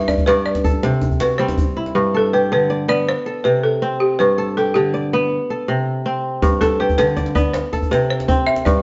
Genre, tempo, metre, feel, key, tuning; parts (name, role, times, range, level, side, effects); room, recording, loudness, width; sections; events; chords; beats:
west african traditional, West African string and xylophone music; 107 BPM (dotted quarters); 12/8; straight; G major; A4 = 440 Hz
balafon; melody; 0.0-8.8 s; G4 to E5; -21 LUFS; equal
kora; arpeggios; 0.0-8.8 s; G2 to D5; -21 LUFS; equal
djembe; percussion; 0.1-1.9, 6.4-8.8 s; -23 LUFS; equal
moderate stone room reverb, RT60 1.1 s; band playing live in one room, nothing above 7.7 kHz; -18 LUFS; mono
0.0-2.0 A section; 2.0-8.8 B section
balafon solo 0.0-2.0
0.0 G5; 0.8 C; 2.0 G; 3.1 Am9; 4.2 G; 5.3 Am; 6.4 G; 7.5 C5
0.27 0.83 1.39 | 1.95 2.51 3.07 3.63 | 4.19 4.75 5.31 5.87 | 6.42 6.98 7.54 8.10 | 8.66